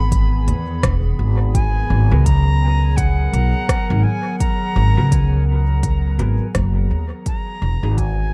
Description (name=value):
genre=ambient dub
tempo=84 BPM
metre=4/4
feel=swing 59% on 16ths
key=G# minor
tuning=A4 = 441 Hz
part: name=breathy silver concert flute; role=melody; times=0.0-8.3 s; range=F#5 to B5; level=-29 LUFS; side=equal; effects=dub echo
part: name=warbly tape-like pad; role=sustained chords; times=0.0-8.3 s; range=D#3 to B4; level=-30 LUFS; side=equal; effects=chorus, built-in reverb
part: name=upright bass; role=bass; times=0.0-8.3 s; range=E1 to E2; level=-18 LUFS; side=equal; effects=none
part: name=electronic kick drum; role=drums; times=0.1-8.1 s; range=none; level=-23 LUFS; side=equal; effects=overdrive
part: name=organic electronic drum kit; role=drums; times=0.1-8.1 s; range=hi-hat, rim click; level=-30 LUFS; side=equal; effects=dub echo
part: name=mellow electric guitar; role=stabs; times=2.1-8.0 s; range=B3 to A#4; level=-35 LUFS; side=equal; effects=analog chorus, dub echo
room=digital ambience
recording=echo-heavy mix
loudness=-18 LUFS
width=mono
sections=0.0-8.3 A section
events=fade-out 5.4-8.3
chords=0.0 Emaj7; 1.5 G#m9; 7.3 Emaj7